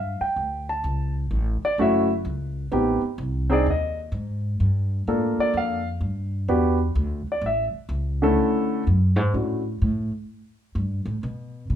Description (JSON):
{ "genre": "jazz piano trio", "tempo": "127 BPM", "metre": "4/4", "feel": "swing 66% on 8ths", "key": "unclear", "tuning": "A4 = 439 Hz", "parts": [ { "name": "dark concert grand piano", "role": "melody", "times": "0.0-9.6 s", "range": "D3 to A5", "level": "-22 LUFS", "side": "equal", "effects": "none" }, { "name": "upright bass", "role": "bass", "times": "0.0-11.8 s", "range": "F#1 to B2", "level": "-24 LUFS", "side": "equal", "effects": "none" } ], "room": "moderate large studio reverb, RT60 0.9 s", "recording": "band playing live in one room", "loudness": "-22 LUFS", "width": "side -10 dB against mid", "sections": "0.0-8.4 A section; 8.4-11.8 A section", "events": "grand piano solo 0.0-8.4; upright bass solo 8.4-11.8", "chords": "0.0 G5; 0.8 F#m7; 2.7 Am7b5; 3.7 G#5; 4.6 Gm9; 6.5 Em7; 7.4 A; 8.4 Dmaj9; 10.3 Gadd9" }